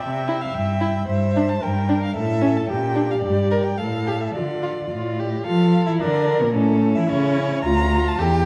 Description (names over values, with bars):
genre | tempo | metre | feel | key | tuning
quick classical-period movement for string quartet | 110 BPM | 2/4 | straight | D minor | A4 = 444 Hz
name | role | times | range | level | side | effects
warm violin | melody | 0.0-8.5 s | A4 to Bb5 | -29 LUFS | equal | none
warm viola | accompaniment | 0.0-8.3 s | A3 to E5 | -28 LUFS | equal | none
rich cello | bass | 0.0-8.5 s | D2 to F3 | -24 LUFS | equal | none
warm violin | second line | 0.3-8.5 s | C#4 to Bb4 | -27 LUFS | equal | none
room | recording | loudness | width
wet scoring stage reverb, RT60 1.9 s | dark, warm production, vinyl crackle | -21 LUFS | mono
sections
0.0-5.5 A section; 5.5-8.5 B section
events
none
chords
0.0 C; 1.1 Gmadd11; 2.2 A; 2.7 Bb; 3.2 Gm; 3.8 Fmaj9/A; 4.3 Dm; 5.5 Fmaj7; 6.0 Bb; 6.6 A; 7.7 Dm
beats
| 0.00 0.54 | 1.08 1.62 | 2.16 2.70 | 3.24 3.79 | 4.35 4.91 | 5.46 6.01 | 6.56 7.11 | 7.66 8.20